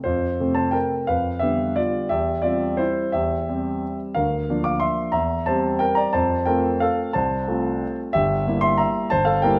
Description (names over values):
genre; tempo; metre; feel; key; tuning
classical, piano waltz; 164-193 BPM; 3/4; rubato; F major; A4 = 441 Hz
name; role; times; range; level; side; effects
warm grand piano; solo; 0.0-9.6 s; G1 to D6; -22 LUFS; equal; none
room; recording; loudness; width
moderate recital hall reverb, RT60 1.4 s; none; -22 LUFS; mono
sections
0.1-9.6 A section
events
none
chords
0.1 F; 1.1 G7/F; 2.1 C/E; 4.2 Bb/D; 5.2 C7/E; 6.2 F; 8.1 Edim/G